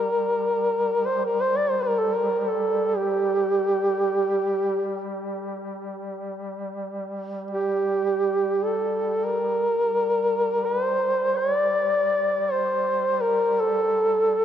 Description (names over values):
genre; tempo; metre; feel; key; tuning
caucasian folk, Caucasian lament; free time; none; none; G minor; A4 = 440 Hz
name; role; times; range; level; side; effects
dark duduk; melody; 0.0-14.4 s; G4 to D5; -21 LUFS; equal; none
mellow duduk; drone; 0.0-14.4 s; G3; -32 LUFS; left 1 dB; none
room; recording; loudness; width
moderate cathedral reverb, RT60 5.1 s; none; -21 LUFS; side -9 dB against mid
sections
0.0-14.4 A section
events
none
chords
none